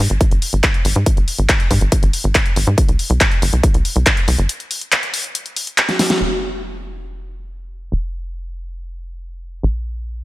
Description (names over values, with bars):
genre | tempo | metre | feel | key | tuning
uplifting trance | 140 BPM | 4/4 | straight | unclear | A4 = 435 Hz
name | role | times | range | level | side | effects
tight sequencer bass | bass | 0.0-10.2 s | F1 to Ab2 | -19 LUFS | equal | sidechain pumping
big-room dance drum kit | drums | 0.1-6.2 s | handclaps, hi-hat, snare drum | -18 LUFS | equal | sidechain pumping on hats
electronic kick drum | drums | 0.2-4.1 s | none | -16 LUFS | equal | none
room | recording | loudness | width
light reverb, digital ambience | none | -14 LUFS | side -18 dB against mid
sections
0.0-6.2 A section; 6.2-10.2 B section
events
break 4.5-6.2; drum fill 5.9-6.2; band accent 6.1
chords
none